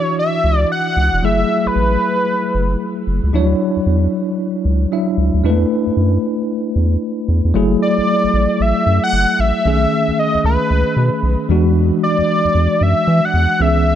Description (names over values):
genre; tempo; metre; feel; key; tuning
R&B, new jack swing; 114 BPM; 4/4; swing 62% on 16ths; F# minor; A4 = 444 Hz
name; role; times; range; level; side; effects
octave-doubled lead; melody; 0.0-3.1, 7.8-14.0 s; B4 to F#5; -17 LUFS; equal; chorus
bell-like tine electric piano; accompaniment; 0.0-14.0 s; D#3 to E5; -18 LUFS; left 1 dB; fast stereo tremolo
round analog bass; bass; 0.4-14.0 s; E1 to E3; -16 LUFS; equal; none
room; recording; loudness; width
little or no reverb; none; -14 LUFS; side -10 dB against mid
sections
0.0-7.5 A section; 7.5-14.0 B section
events
none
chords
0.0 Dmaj9; 1.2 F#m9; 3.3 Dmaj9; 5.4 E7sus4; 7.5 F#m9; 9.7 B13; 11.5 E9